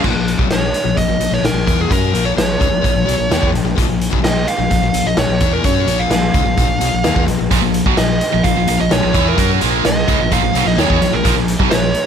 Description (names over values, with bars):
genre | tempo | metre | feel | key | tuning
hard rock | 128 BPM | 4/4 | straight | unclear | A4 = 445 Hz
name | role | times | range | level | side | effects
crunchy overdriven guitar | riff | 0.0-11.9 s | Bb2 to Gb4 | -19 LUFS | left 11 dB | none
tight distorted guitar | riff | 0.0, 7.5-11.9 s | Bb2 to Gb4 | -19 LUFS | right 12 dB | distortion
fuzz fingered electric bass | bass | 0.0-11.9 s | Bb1 to Gb2 | -21 LUFS | right 1 dB | overdrive
raw garage drum kit | drums | 0.0-12.1 s | crash cymbal, hi-hat, kick drum, snare drum | -18 LUFS | equal | none
dark smooth lead guitar | melody | 0.5-12.1 s | Ab4 to F5 | -19 LUFS | right 4 dB | overdrive, tape echo
room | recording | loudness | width
light reverb | none | -13 LUFS | side -8 dB against mid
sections
0.0-12.1 A section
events
none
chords
0.0 Bbm